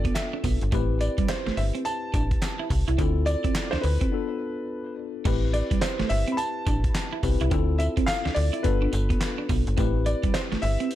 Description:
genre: R&B, new jack swing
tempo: 106 BPM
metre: 4/4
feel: swing 62% on 16ths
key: A minor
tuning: A4 = 440 Hz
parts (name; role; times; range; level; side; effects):
- clear concert grand piano; melody; 0.0-10.9 s; B4 to B5; -31 LUFS; equal; tape echo
- tine electric piano; accompaniment; 0.0-11.0 s; B3 to B4; -31 LUFS; moving between left 11 dB and left 1 dB; auto-pan
- electric guitar at the edge of break-up; riff; 0.0-10.9 s; G3 to E4; -32 LUFS; right 6 dB; analog chorus
- slap-like FM bass; bass; 0.0-10.8 s; G1 to D2; -25 LUFS; equal; none
- dusty soul sampler-style drum kit; drums; 0.0-11.0 s; crash cymbal, handclaps, hi-hat, kick drum, snare drum, tambourine; -27 LUFS; equal; gated reverb
- group handclap; percussion; 0.2-3.7 s; none; -44 LUFS; right 5 dB; none
room: little or no reverb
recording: none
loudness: -23 LUFS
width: side -13 dB against mid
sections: 0.0-5.3 A section; 5.3-11.0 A section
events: break 4.1-5.3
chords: 0.0 G7; 0.7 Am7; 3.0 Dm7; 4.1 Bm7b5; 5.3 Am7; 7.5 Dm7; 8.6 G7; 9.8 Am7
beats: 0.16 | 0.72 1.29 1.86 2.42 | 2.99 3.56 4.12 4.69 | 5.25 5.82 6.38 6.95 | 7.52 8.08 8.65 9.21 | 9.78 10.35 10.91

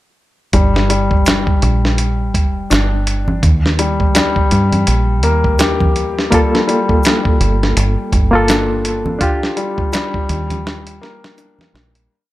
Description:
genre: trip hop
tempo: 83 BPM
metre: 4/4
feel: swing 58% on 16ths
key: G minor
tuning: A4 = 440 Hz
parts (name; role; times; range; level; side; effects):
- felt-muted upright piano; arpeggios; 0.5-12.1 s; G3 to G4; -19 LUFS; left 3 dB; tape echo
- deep dub fingered electric bass; bass; 0.5-12.1 s; F1 to G2; -17 LUFS; equal; none
- dusty soul sampler-style drum kit; drums; 0.5-12.1 s; hi-hat, kick drum, snare drum; -16 LUFS; equal; none
- egg shaker and congas; percussion; 1.3-11.7 s; none; -24 LUFS; right 1 dB; none
- reed electric piano; accompaniment; 6.3-12.1 s; Bb3 to A4; -17 LUFS; equal; overdrive, medium tremolo, tape echo
room: light reverb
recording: none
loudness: -12 LUFS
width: side -16 dB against mid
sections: 0.5-12.1 groove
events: fade-out 8.2-12.1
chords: 0.5 Gm; 3.4 Eb; 6.3 Gm7; 9.2 Ebmaj7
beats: | 0.54 1.26 1.98 2.70 | 3.43 4.15 4.87 5.59 | 6.32 7.04 7.76 8.49 | 9.21 9.93 10.66 11.38

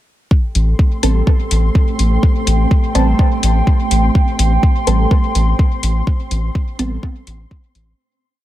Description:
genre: dub techno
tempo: 125 BPM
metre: 4/4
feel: swing 54% on 16ths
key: A minor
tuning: A4 = 440 Hz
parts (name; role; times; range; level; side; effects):
- dark analog pad; sustained chords; 0.3-8.0 s; A3 to C6; -21 LUFS; right 2 dB; chorus, sidechain pumping
- electronic kick drum; drums; 0.3-7.6 s; none; -13 LUFS; equal; none
- flickering grainy texture; texture; 0.8-8.0 s; C4 to C6; -27 LUFS; equal; built-in reverb, sidechain pumping
- round analog bass; bass; 0.6-7.9 s; A1; -14 LUFS; equal; sidechain pumping
- electronic hi-hat; drums; 0.6-7.9 s; none; -23 LUFS; left 4 dB; none
- filtered dub chord stab; stabs; 1.0-8.0 s; G3 to A4; -22 LUFS; right 2 dB; phaser, sidechain pumping, dub echo
room: little or no reverb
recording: echo-heavy mix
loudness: -12 LUFS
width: side -14 dB against mid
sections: 0.3-8.0 groove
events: filter sweep on synth stab 0.3-8.0; fade-out 5.4-8.0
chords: 0.3 Am9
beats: | 0.31 0.79 1.27 1.75 | 2.23 2.71 3.19 3.67 | 4.15 4.63 5.11 5.59 | 6.07 6.55 7.03 7.51

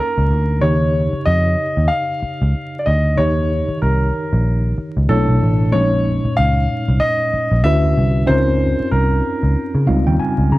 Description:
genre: R&B, neo-soul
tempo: 94 BPM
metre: 4/4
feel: swing 58% on 16ths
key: unclear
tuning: A4 = 441 Hz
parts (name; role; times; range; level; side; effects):
- clear concert grand piano; melody; 0.0-10.5 s; A4 to F5; -20 LUFS; equal; none
- tine electric piano; accompaniment; 0.0-10.6 s; Bb2 to Bb5; -21 LUFS; equal; overdrive, fast stereo tremolo
- vintage muted picked electric bass; bass; 0.2-10.6 s; A1 to Db3; -16 LUFS; equal; none
room: small room ambience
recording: dry, close 1970s-style studio recording, vinyl crackle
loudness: -14 LUFS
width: side -18 dB against mid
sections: 0.0-10.6 A section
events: tine electric piano fill 9.6-10.6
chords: 0.0 Db69; 0.6 Eb7; 5.1 Bm11; 5.7 Bbm11; 7.6 Dmaj13; 8.3 Dbmaj13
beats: | 0.61 1.25 1.89 2.53 | 3.17 3.81 4.45 5.08 | 5.72 6.36 7.00 7.64 | 8.28 8.91 9.55 10.19

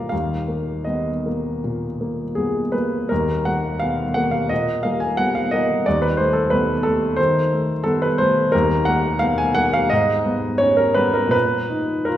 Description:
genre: classical, romantic character piece for solo piano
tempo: 78-92 BPM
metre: 4/4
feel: rubato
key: Eb minor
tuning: A4 = 442 Hz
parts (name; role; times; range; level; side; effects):
- warm baby grand piano; solo; 0.0-12.2 s; Eb2 to Ab5; -18 LUFS; equal; none
room: wet recital hall reverb, RT60 1.6 s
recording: heard from further back in the room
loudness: -18 LUFS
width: side -12 dB against mid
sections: 0.0-3.1 A section; 3.1-12.2 A section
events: none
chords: 0.1 Eb5; 5.9 B7b9/D#; 8.5 Eb5; 9.9 Abm; 11.3 Eb5/Bb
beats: | 0.12 0.87 1.64 2.37 | 3.10 3.81 4.50 5.18 | 5.86 6.51 7.18 7.85 | 8.53 9.21 9.90 10.60 | 11.33 12.07

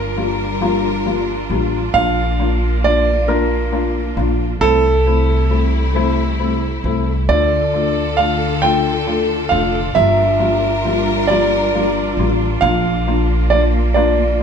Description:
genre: six-eight pop ballad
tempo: 45 BPM (dotted quarters)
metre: 6/8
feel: straight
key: unclear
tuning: A4 = 441 Hz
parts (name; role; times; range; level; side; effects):
- clear grand piano; melody; 0.0-14.4 s; A4 to G5; -17 LUFS; right 4 dB; none
- warm symphonic string section; sustained chords; 0.0-14.4 s; C3 to Bb4; -22 LUFS; equal; none
- upright bass; bass; 0.0-14.4 s; F1 to D2; -19 LUFS; equal; none
- felt-muted upright piano; accompaniment; 0.2-14.4 s; G3 to F4; -21 LUFS; left 5 dB; none
room: wet large studio reverb, RT60 1.1 s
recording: band playing live in one room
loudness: -14 LUFS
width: side -7 dB against mid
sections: 0.0-14.4 A section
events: none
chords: 0.0 Gm7; 1.9 Bb; 4.6 C6; 7.3 Dm; 10.0 Gm7; 12.6 Bb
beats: 0.61 | 1.94 3.28 | 4.62 5.95 | 7.29 8.62 | 9.96 11.29 | 12.63 13.96

